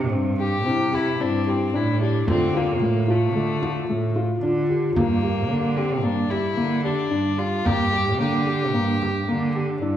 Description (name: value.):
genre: contemporary instrumental, chamber music in an uneven meter.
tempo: 111 BPM.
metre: 5/4.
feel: straight.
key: G dorian.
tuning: A4 = 440 Hz.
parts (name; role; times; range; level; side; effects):
vibraphone with soft mallets; second line; 0.0-10.0 s; D4 to G4; -27 LUFS; left 1 dB; none.
felt-muted upright piano; arpeggios; 0.0-10.0 s; A3 to G4; -25 LUFS; left 1 dB; none.
clear cello; bass; 0.0-10.0 s; G2 to D3; -25 LUFS; right 2 dB; none.
rich violin; melody; 0.4-9.8 s; A3 to G4; -26 LUFS; left 3 dB; none.
frame drum; percussion; 0.9-9.4 s; none; -30 LUFS; right 1 dB; none.
room: wet scoring stage reverb, RT60 1.6 s.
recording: heard from further back in the room.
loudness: -20 LUFS.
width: side -10 dB against mid.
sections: 0.0-10.0 A section.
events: none.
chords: 0.0 Cadd9; 2.3 Dm; 5.0 Gm.